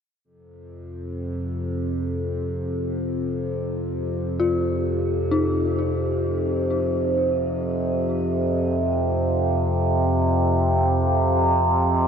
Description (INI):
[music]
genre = dark ambient drone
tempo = free time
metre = none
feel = none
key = unclear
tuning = A4 = 440 Hz
[part]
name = overtone-sweeping drone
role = drone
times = 0.6-12.1 s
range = F2 to C3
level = -21 LUFS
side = equal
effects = chorus, built-in reverb
[part]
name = dark detuned synth bell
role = arpeggios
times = 4.4-12.1 s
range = Eb4 to F4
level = -27 LUFS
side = left 3 dB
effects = chorus, ping-pong delay, shimmer reverb
[sound]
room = wet huge ambient reverb, RT60 8.9 s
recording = in a vast, echoing space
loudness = -21 LUFS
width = side -7 dB against mid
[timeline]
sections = 0.2-12.1 A section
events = none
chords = 0.2 F5